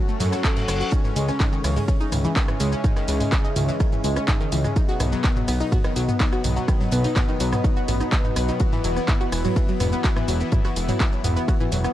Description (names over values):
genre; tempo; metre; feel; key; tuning
melodic techno; 125 BPM; 4/4; straight; unclear; A4 = 440 Hz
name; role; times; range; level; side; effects
deep dark ambient pad; sustained chords; 0.0-11.9 s; F#4 to C#6; -32 LUFS; equal; chorus, built-in reverb, sidechain pumping
analog pluck; arpeggios; 0.0-11.9 s; D#3 to C#5; -28 LUFS; right 1 dB; chorus, phaser, sidechain pumping, tape echo
brassy analog pad; stabs; 0.0-11.9 s; B2 to F#4; -29 LUFS; left 4 dB; chorus, sidechain pumping, tape echo
reverse cymbal; sound effects; 0.3-0.9 s; none; -33 LUFS; left 2 dB; none
house drum kit; drums; 0.1-11.9 s; handclaps, hi-hat, rim click, shaker, toms; -28 LUFS; equal; overdrive, sidechain pumping on perc, sidechain pumping on toms, sidechain pumping on hats
fat analog bass; bass; 0.2-11.9 s; E1 to F#2; -23 LUFS; equal; transformer saturation, sidechain pumping
huge arena drum kit; drums; 0.2-11.8 s; hi-hat, ride cymbal, snare drum; -42 LUFS; left 1 dB; none
electronic kick drum; drums; 0.4-11.6 s; none; -21 LUFS; equal; overdrive
room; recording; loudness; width
little or no reverb; dry, gritty hardware recording, transformer saturation, cassette tape; -19 LUFS; side -13 dB against mid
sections
0.0-11.9 A section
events
reverse cymbal 0.3-0.9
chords
0.0 F#m; 0.9 C#madd9; 4.8 B; 8.6 Esus2